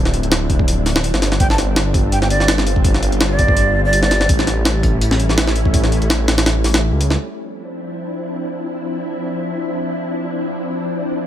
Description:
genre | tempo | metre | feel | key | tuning
drum and bass, jungle | 166 BPM | 4/4 | swing 54% on 16ths | D minor | A4 = 440 Hz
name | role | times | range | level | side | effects
soft string machine | sustained chords | 0.0-11.3 s | F3 to F4 | -22 LUFS | equal | ensemble chorus
detuned saw bass | bass | 0.0-7.2 s | D1 to C#2 | -18 LUFS | equal | none
jungle sampler-style drum kit | drums | 0.1-7.2 s | hi-hat, kick drum, snare drum | -16 LUFS | equal | studio reverb
breathy jazz flute | melody | 1.4-4.3 s | D5 to A5 | -20 LUFS | right 1 dB | dub echo
room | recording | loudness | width
light reverb | none | -14 LUFS | side -11 dB against mid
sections
0.0-7.2 A section; 7.2-11.3 B section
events
none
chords
0.0 Dm9; 1.4 G7sus4; 4.3 A7; 7.2 Dm9

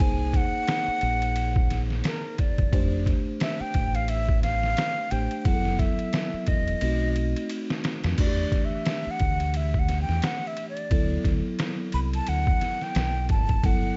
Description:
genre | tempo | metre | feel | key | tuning
hip hop, jazz-hop | 88 BPM | 4/4 | swing 57% on 16ths | E minor | A4 = 440 Hz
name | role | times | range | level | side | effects
breathy mellow silver concert flute | melody | 0.0-14.0 s | A#4 to B5 | -32 LUFS | equal | slapback echo
mellow tine electric piano | accompaniment | 0.0-14.0 s | E3 to B#4 | -34 LUFS | equal | none
deep dub fingered electric bass | bass | 0.0-13.9 s | E1 to F2 | -29 LUFS | equal | none
trip hop sampler-style drum kit | drums | 0.0-13.8 s | crash cymbal, hi-hat, kick drum, ride cymbal, snare drum | -29 LUFS | equal | vintage 12-bit sampler grit
room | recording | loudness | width
digital ambience | vinyl crackle, nothing above 7.8 kHz | -26 LUFS | mono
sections
0.0-8.2 A section; 8.2-14.0 B section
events
drum fill 6.8-8.2; flute solo 8.2-14.0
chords
0.0 G#9; 2.7 Fadd9; 5.5 Esus24; 6.8 B7b9; 8.2 Em7; 10.9 D

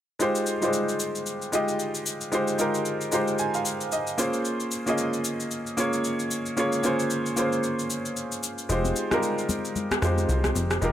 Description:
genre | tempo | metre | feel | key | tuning
amapiano | 113 BPM | 4/4 | swing 58% on 16ths | F minor | A4 = 442 Hz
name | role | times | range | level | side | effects
warm baby grand piano | accompaniment | 0.2-10.9 s | G3 to Bb5 | -25 LUFS | equal | none
electronic shaker and rim click | drums | 0.2-10.9 s | none | -31 LUFS | left 1 dB | none
plucky analog bass | bass | 8.7-10.9 s | F1 to F2 | -25 LUFS | equal | none
congas | percussion | 8.8-10.7 s | none | -33 LUFS | left 4 dB | none
room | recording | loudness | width
light reverb, studio ambience | none | -24 LUFS | side -11 dB against mid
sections
0.2-10.9 A section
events
grand piano fill 2.9-4.4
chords
0.2 Fm9; 4.2 Bbm9; 8.7 Fm9

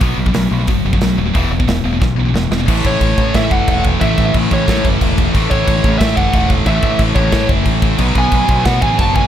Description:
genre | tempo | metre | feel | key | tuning
heavy metal | 181 BPM | 4/4 | straight | unclear | A4 = 438 Hz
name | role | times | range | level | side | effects
heavy high-gain guitar | riff | 0.0-9.3 s | E2 to B3 | -21 LUFS | right 12 dB | distortion
high-gain distorted guitar | riff | 0.0-9.3 s | E2 to B3 | -20 LUFS | left 12 dB | distortion
growling fingered electric bass | bass | 0.0-9.3 s | D#1 to B2 | -18 LUFS | equal | overdrive
tight metal drum kit | drums | 0.0-9.2 s | crash cymbal, hi-hat, kick drum, snare drum | -16 LUFS | equal | none
fuzz guitar | riff | 2.7-9.3 s | A2 to B3 | -22 LUFS | right 3 dB | distortion
high-gain lead guitar | melody | 2.9-9.3 s | C#5 to A5 | -19 LUFS | right 1 dB | distortion, tape echo
room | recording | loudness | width
little or no reverb | none | -12 LUFS | side -10 dB against mid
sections
0.0-2.7 A section; 2.7-9.3 B section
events
drum fill 2.0-2.7; half time 2.7-9.3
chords
0.0 B5; 1.4 E5; 2.7 A; 8.0 B5

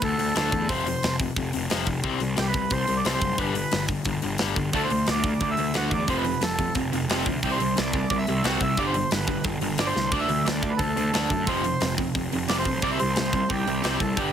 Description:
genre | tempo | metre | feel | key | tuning
punk rock | 178 BPM | 4/4 | straight | unclear | A4 = 440 Hz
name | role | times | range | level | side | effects
melodica | melody | 0.0-14.3 s | F#4 to E6 | -28 LUFS | right 2 dB | none
overdriven semi-hollow guitar | riff | 0.0-14.3 s | F2 to D4 | -28 LUFS | left 9 dB | none
fuzz picked electric bass | bass | 0.0-14.3 s | F1 to F#2 | -29 LUFS | right 1 dB | overdrive
tight metal drum kit | drums | 0.0-14.3 s | hi-hat, kick drum, snare drum | -28 LUFS | equal | none
distorted electric guitar | riff | 4.7-14.3 s | F2 to D4 | -30 LUFS | right 15 dB | distortion
room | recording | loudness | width
light reverb | heavily compressed radio sound, multiband compression | -22 LUFS | side -9 dB against mid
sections
0.0-14.3 A section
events
drum fill 10.0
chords
0.0 D5; 0.7 F5; 2.0 C5; 3.4 G; 4.7 D; 6.1 F; 7.4 C; 8.8 G; 10.1 D5; 11.5 F5; 12.8 C5

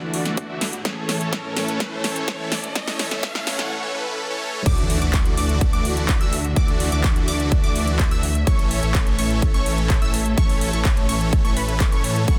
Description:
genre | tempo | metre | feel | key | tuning
EDM, festival progressive house | 126 BPM | 4/4 | straight | unclear | A4 = 440 Hz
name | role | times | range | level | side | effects
warm studio string section | sustained chords | 0.0-12.4 s | D2 to F#5 | -35 LUFS | equal | sidechain pumping
supersaw chords | riff | 0.0-12.4 s | E3 to E5 | -28 LUFS | equal | sidechain pumping, low-pass filter, dub echo
riser and impact | sound effects | 0.0-6.6 s | none | -34 LUFS | equal | none
big-room dance drum kit | drums | 0.1-12.4 s | crash cymbal, handclaps, hi-hat, snare drum | -30 LUFS | equal | none
electronic kick drum | drums | 0.4-12.4 s | none | -22 LUFS | equal | overdrive, high-pass filter on kick
unison pluck | arpeggios | 4.7-12.4 s | B5 to E6 | -34 LUFS | equal | phaser, sidechain pumping, dub echo
detuned saw bass | bass | 4.7-12.4 s | F#1 to A2 | -26 LUFS | equal | chorus, sidechain pumping
room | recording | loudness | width
light reverb, digital ambience | dense, heavily limited modern master, high-pass filter | -21 LUFS | mono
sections
0.0-4.7 A section; 4.7-12.4 B section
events
build-up 0.0-4.7; drum fill 0.0-3.7; riser 0.0-3.7; filter sweep on supersaw synth 0.0-4.7; drop 4.7-12.4; impact 4.7-6.6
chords
0.0 Dadd9; 0.9 A; 4.7 Dadd9; 8.5 A

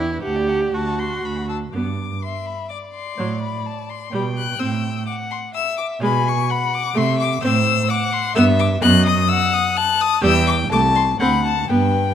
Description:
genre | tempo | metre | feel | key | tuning
quick classical-period movement for string quartet | 127 BPM | 3/4 | rubato | G major | A4 = 439 Hz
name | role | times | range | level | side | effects
warm violin | melody | 0.0-12.1 s | E5 to F#6 | -22 LUFS | left 11 dB | none
dark violin | second line | 0.0-12.1 s | G4 to C6 | -24 LUFS | left 4 dB | none
rich viola | accompaniment | 0.0-11.9 s | F#3 to G4 | -22 LUFS | right 2 dB | none
warm cello | bass | 0.0-12.1 s | C2 to C3 | -22 LUFS | right 3 dB | none
room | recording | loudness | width
moderate concert hall reverb, RT60 2.3 s | none | -17 LUFS | side -9 dB against mid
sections
0.0-1.7 A section; 1.7-12.1 B section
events
none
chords
0.2 D; 1.7 G; 3.2 Amadd11; 4.1 G/B; 4.6 Am; 6.0 Bm69; 7.0 Am/C; 7.4 F#dim/A; 8.4 G; 8.8 B7/F#; 10.2 Em; 10.7 Am/C; 11.2 D7

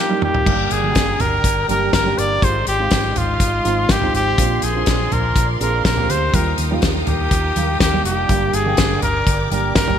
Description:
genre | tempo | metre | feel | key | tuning
piano-driven pop | 123 BPM | 4/4 | straight | unclear | A4 = 440 Hz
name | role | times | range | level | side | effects
clear trumpet | melody | 0.0-10.0 s | F4 to D5 | -20 LUFS | equal | none
dark upright piano | accompaniment | 0.0-10.0 s | Eb2 to G5 | -23 LUFS | right 4 dB | lush chorus
clear studio string section | sustained chords | 0.0-10.0 s | Bb2 to Eb6 | -29 LUFS | left 2 dB | none
loose indie drum kit | drums | 0.2-10.0 s | crash cymbal, hi-hat, kick drum, snare drum, toms | -19 LUFS | left 1 dB | gated reverb
vintage muted fingered electric bass | bass | 0.5-10.0 s | F1 to Eb2 | -22 LUFS | left 1 dB | none
room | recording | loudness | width
light reverb, studio reverb | bright 1980s-style digital production | -15 LUFS | side -9 dB against mid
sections
0.5-10.0 A section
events
drum fill 0.0-0.5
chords
0.5 Gm; 2.4 Fm7/Ab; 4.4 Bbadd9; 6.3 Ebadd9; 8.3 Gm

